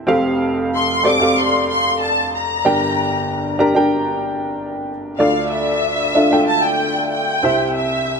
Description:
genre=pop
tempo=94 BPM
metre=4/4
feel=straight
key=F major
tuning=A4 = 441 Hz
part: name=warm upright piano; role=accompaniment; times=0.0-8.2 s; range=F1 to Bb5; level=-17 LUFS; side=equal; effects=none
part: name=warm studio violin section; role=melody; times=0.8-8.2 s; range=E5 to D6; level=-18 LUFS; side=left 1 dB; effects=none
room=moderate plate reverb, RT60 3.5 s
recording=none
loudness=-15 LUFS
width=side -5 dB against mid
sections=0.0-8.2 A section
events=none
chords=0.1 Fadd9; 2.6 Gm; 5.2 Dmadd9; 7.4 C

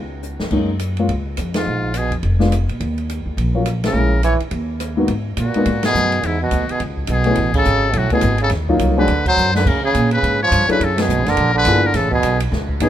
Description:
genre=jazz, small-group swing and bop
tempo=210 BPM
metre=4/4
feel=swing 60% on 8ths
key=Eb minor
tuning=A4 = 442 Hz
part: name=upright bass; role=bass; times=0.0-12.9 s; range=F1 to C#3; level=-20 LUFS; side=equal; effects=none
part: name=open jazz drum kit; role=drums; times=0.2-12.9 s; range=crash cymbal, hi-hat, kick drum, ride cymbal, rim click, snare drum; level=-26 LUFS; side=equal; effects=none
part: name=dark grand piano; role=accompaniment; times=0.5-12.9 s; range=Ab2 to A4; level=-21 LUFS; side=left 2 dB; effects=none
part: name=bright trombone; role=second line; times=1.5-12.9 s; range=G#2 to F#3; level=-22 LUFS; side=right 4 dB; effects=none
part: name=trumpet with metal mute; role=melody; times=1.6-12.9 s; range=E4 to Db5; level=-20 LUFS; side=left 3 dB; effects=none
room=little or no reverb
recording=minimal, uncompressed stereo recording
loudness=-15 LUFS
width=side -11 dB against mid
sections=0.0-5.1 A section; 5.1-12.9 B section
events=drum fill 0.2, 9.4; band accent 1.5, 3.8, 5.8, 7.5, 9.2, 10.9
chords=0.0 Db; 0.5 Gb6; 1.7 Bb7(no3); 2.8 Eb5; 4.0 Bbm7b5; 4.5 Eb5; 5.1 G#m9; 6.2 E9; 7.4 Amaj9; 8.5 D#m9; 9.1 D7; 9.7 C#6; 10.8 B5; 11.4 A#7#11; 11.9 Amaj9

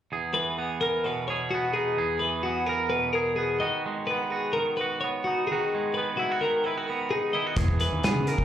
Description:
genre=math rock and midwest emo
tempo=128 BPM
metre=4/4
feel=straight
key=E lydian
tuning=A4 = 440 Hz
part: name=twangy electric guitar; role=accompaniment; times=0.1-8.4 s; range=E2 to A#4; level=-29 LUFS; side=right 4 dB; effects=spring reverb, plate reverb, slapback echo
part: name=twelve-string electric guitar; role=arpeggios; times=0.3-8.4 s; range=F#4 to D#5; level=-27 LUFS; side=left 3 dB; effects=plate reverb, slapback echo
part: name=fuzz fingered electric bass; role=bass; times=7.6-8.3 s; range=D#2 to C#3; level=-27 LUFS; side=equal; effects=overdrive
part: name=loose indie drum kit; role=drums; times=7.6-8.4 s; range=hi-hat, kick drum, snare drum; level=-26 LUFS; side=equal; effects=none
room=moderate club reverb, RT60 0.8 s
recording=live gig heard through the venue's PA, club reverb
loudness=-24 LUFS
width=side -10 dB against mid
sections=0.1-8.4 A section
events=none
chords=0.1 Eadd9; 3.6 G#m7/D#; 7.6 E

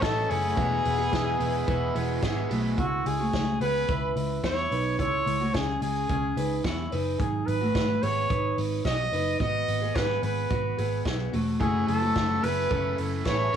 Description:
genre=jangly indie pop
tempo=109 BPM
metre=4/4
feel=straight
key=unclear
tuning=A4 = 440 Hz
part: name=clear trumpet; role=melody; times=0.0-13.6 s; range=F#4 to D#5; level=-29 LUFS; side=equal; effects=none
part: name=chorused retro synth keys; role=accompaniment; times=0.0-2.8, 11.6-13.6 s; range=A3 to B4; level=-36 LUFS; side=right 2 dB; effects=none
part: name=overdriven electric guitar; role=accompaniment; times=0.0-2.8, 11.6-13.6 s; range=F#2 to F#4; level=-36 LUFS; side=right 7 dB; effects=none
part: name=phased analog pad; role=sustained chords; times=0.0-2.8 s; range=A3 to C#6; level=-37 LUFS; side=left 3 dB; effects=phaser, chorus
part: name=electric guitar through a small old amp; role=arpeggios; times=0.0-13.6 s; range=F#3 to D#5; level=-30 LUFS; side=left 2 dB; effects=none
part: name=vintage muted picked electric bass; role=bass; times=0.0-13.6 s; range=E1 to E2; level=-30 LUFS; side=right 1 dB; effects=none
part: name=vintage drum kit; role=drums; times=0.0-13.6 s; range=hi-hat, kick drum, snare drum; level=-33 LUFS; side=right 1 dB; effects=none
room=moderate studio reverb, RT60 0.5 s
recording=none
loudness=-24 LUFS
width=side -8 dB against mid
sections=0.0-2.8 A section; 2.8-13.6 B section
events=none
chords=0.0 F#m; 0.6 E; 2.8 C#m; 7.2 G#m7

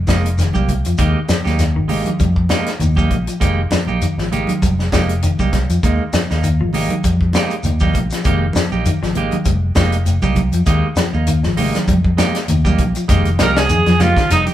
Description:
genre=afrobeat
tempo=99 BPM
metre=4/4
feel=swing 55% on 16ths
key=F minor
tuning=A4 = 440 Hz
part: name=clean electric guitar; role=arpeggios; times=0.0-14.5 s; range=Eb3 to G3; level=-24 LUFS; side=left 4 dB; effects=none
part: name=fingered electric bass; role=bass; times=0.0-14.4 s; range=F1 to F2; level=-18 LUFS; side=equal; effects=none
part: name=clean electric guitar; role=stabs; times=0.1-14.5 s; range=Ab3 to G4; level=-23 LUFS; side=right 4 dB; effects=spring reverb
part: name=tight funk drum kit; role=drums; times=0.1-14.5 s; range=hi-hat, kick drum, snare drum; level=-20 LUFS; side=equal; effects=none
part: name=congas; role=percussion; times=0.1-14.5 s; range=none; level=-23 LUFS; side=right 2 dB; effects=none
part: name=shekere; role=percussion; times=0.1-14.5 s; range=none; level=-22 LUFS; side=left 1 dB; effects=none
part: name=edgy alto saxophone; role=melody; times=13.4-14.4 s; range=Eb4 to Bb4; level=-18 LUFS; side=right 3 dB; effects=none
part: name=warm trumpet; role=second line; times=13.4-14.5 s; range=Eb4 to Bb4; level=-20 LUFS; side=right 2 dB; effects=none
room=moderate studio reverb, RT60 0.6 s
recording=band playing live in one room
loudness=-14 LUFS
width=side -12 dB against mid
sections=0.0-13.1 A section; 13.1-14.5 B section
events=none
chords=0.0 Fm11

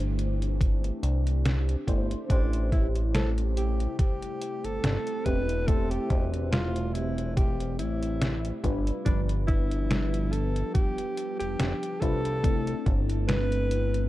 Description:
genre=vaporwave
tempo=71 BPM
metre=4/4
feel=swing 55% on 16ths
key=A minor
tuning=A4 = 441 Hz
part: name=mellow FM electric piano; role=accompaniment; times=0.0-14.1 s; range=F3 to E5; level=-34 LUFS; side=left 1 dB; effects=analog chorus
part: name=warbly tape-like pad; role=sustained chords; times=0.0-14.1 s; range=C3 to G4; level=-39 LUFS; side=right 1 dB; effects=chorus, built-in reverb, phaser, vintage 12-bit sampler grit
part: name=chorused synth bass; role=bass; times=0.0-14.1 s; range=E1 to C2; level=-28 LUFS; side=equal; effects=tube saturation
part: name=detuned 8-bit digital drum machine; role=drums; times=0.0-14.1 s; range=hi-hat, snare drum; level=-31 LUFS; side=equal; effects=none
part: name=electronic kick drum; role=drums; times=0.6-13.0 s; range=none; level=-26 LUFS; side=equal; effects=none
part: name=breathy alto saxophone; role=melody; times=2.3-14.1 s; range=D4 to B4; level=-33 LUFS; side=equal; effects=tape echo
room=little or no reverb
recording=dark, warm production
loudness=-25 LUFS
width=side -16 dB against mid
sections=0.0-14.1 A section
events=none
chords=0.0 C69; 2.3 Am7; 8.6 G7; 12.4 C69

